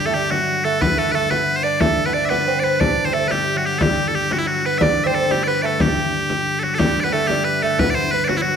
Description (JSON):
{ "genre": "medieval dance", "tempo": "120 BPM (dotted quarters)", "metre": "6/8", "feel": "straight", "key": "G major", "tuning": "A4 = 440 Hz", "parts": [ { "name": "loud bright bagpipes", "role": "melody", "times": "0.0-8.6 s", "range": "E4 to E5", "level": "-20 LUFS", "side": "equal", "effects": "none" }, { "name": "lute", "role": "second line", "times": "0.0-8.6 s", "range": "F#3 to D4", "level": "-23 LUFS", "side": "right 4 dB", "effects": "none" }, { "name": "pipe organ, flutes", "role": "drone", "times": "0.0-8.6 s", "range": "G2 to D3", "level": "-27 LUFS", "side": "left 3 dB", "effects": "none" }, { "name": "frame drum", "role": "percussion", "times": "0.2-8.5 s", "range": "none", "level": "-23 LUFS", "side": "left 2 dB", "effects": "none" } ], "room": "wet recital hall reverb, RT60 1.4 s", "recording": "none", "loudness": "-16 LUFS", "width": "side -7 dB against mid", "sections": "0.0-6.8 A section; 6.8-8.6 B section", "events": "none", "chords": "none", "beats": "0.31 | 0.81 1.31 | 1.81 2.31 | 2.81 3.31 | 3.81 4.30 | 4.80 5.30 | 5.80 6.30 | 6.80 7.29 | 7.79 8.29" }